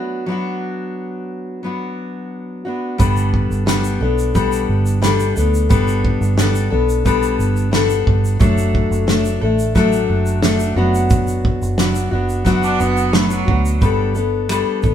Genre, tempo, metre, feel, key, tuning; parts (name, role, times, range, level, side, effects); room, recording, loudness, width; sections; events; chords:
acoustic pop; 89 BPM; 4/4; straight; G major; A4 = 440 Hz
fingerpicked steel-string acoustic guitar; accompaniment; 0.0-14.9 s; F#3 to A4; -18 LUFS; left 3 dB
vintage muted fingered electric bass; bass; 3.0-14.9 s; F#1 to D2; -19 LUFS; right 1 dB
loose indie drum kit; drums; 3.0-14.9 s; finger snaps, kick drum, shaker, snare drum; -19 LUFS; right 1 dB
bright cello; second line; 12.6-13.8 s; F#3 to D4; -21 LUFS; right 4 dB
light reverb; band playing live in one room; -14 LUFS; side -9 dB against mid
0.0-3.0 A section; 3.0-13.8 B section; 13.8-14.9 C section
0.0 Bm/F#; 3.0 Gadd9; 8.4 D/F#; 10.8 Bm/F#; 13.8 Gadd9